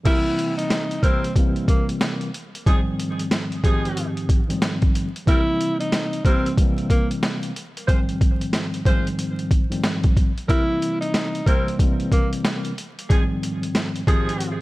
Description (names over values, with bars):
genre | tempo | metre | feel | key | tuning
hip hop, boom-bap hip-hop | 92 BPM | 4/4 | swing 61% on 16ths | F minor | A4 = 440 Hz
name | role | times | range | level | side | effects
mellow tine electric piano | accompaniment | 0.0-14.6 s | Ab2 to G4 | -25 LUFS | equal | medium stereo tremolo, cassette tape, high-pass filter, low-pass filter
breathy tenor saxophone | melody | 0.1-12.3 s | Bb3 to E4 | -25 LUFS | equal | high-pass filter, low-pass filter, tape echo
bright saxophone section | stabs | 0.1-14.5 s | F3 to C5 | -29 LUFS | right 1 dB | high-pass filter, low-pass filter, tape echo
boom bap sampler-style drum kit | drums | 0.1-14.6 s | crash cymbal, hi-hat, kick drum, snare drum | -20 LUFS | equal | none
room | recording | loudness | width
little or no reverb | vinyl crackle | -19 LUFS | side -19 dB against mid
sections
0.1-14.6 A section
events
none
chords
0.1 C7; 2.7 Fm7; 5.3 C7; 7.9 Fm7; 10.5 C7; 13.1 Fm7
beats
| 0.06 0.71 1.36 2.01 | 2.66 3.32 3.97 4.62 | 5.27 5.92 6.58 7.23 | 7.88 8.53 9.19 9.84 | 10.49 11.14 11.79 12.45 | 13.10 13.75 14.40